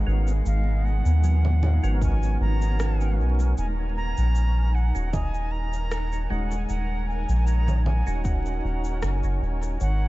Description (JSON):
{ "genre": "ambient dub", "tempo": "77 BPM", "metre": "4/4", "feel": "swing 54% on 16ths", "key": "Eb minor", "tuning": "A4 = 441 Hz", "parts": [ { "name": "concert flute", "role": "melody", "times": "0.0-10.1 s", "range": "F5 to Bb5", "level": "-36 LUFS", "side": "right 2 dB", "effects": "dub echo" }, { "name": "granular cloud pad", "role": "sustained chords", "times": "0.0-10.1 s", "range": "Ab3 to Ab5", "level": "-36 LUFS", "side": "right 1 dB", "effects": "built-in reverb" }, { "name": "handpan", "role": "arpeggios", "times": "0.0-10.1 s", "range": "F3 to Eb5", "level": "-39 LUFS", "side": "left 2 dB", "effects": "dub echo" }, { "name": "soft dub sub bass", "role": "bass", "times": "0.0-10.1 s", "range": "Eb1 to Eb2", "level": "-22 LUFS", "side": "equal", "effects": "none" }, { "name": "bubbling stepped-filter texture", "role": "texture", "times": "0.0-10.1 s", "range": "Ab5", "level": "-42 LUFS", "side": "right 5 dB", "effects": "chorus, built-in reverb" }, { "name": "percussive tonewheel organ", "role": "stabs", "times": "0.1-9.8 s", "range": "Cb4 to Bb4", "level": "-37 LUFS", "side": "right 2 dB", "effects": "chorus vibrato, slow rotary speaker, dub echo" }, { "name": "electronic cabasa, congas and rim click", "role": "drums", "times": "0.3-10.0 s", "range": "none", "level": "-35 LUFS", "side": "right 1 dB", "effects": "dub echo" }, { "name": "electronic kick drum", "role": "drums", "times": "2.0-8.4 s", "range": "none", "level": "-26 LUFS", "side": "equal", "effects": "none" } ], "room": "digital ambience", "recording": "echo-heavy mix, vinyl crackle, nothing above 7.9 kHz, faint mains hum", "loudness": "-22 LUFS", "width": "side -18 dB against mid", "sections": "0.0-10.1 A section", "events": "none", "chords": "0.0 Abm11; 3.6 Ebm7", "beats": "| 0.46 1.24 2.02 2.80 | 3.58 4.35 5.13 5.91 | 6.69 7.47 8.25 9.03 | 9.81" }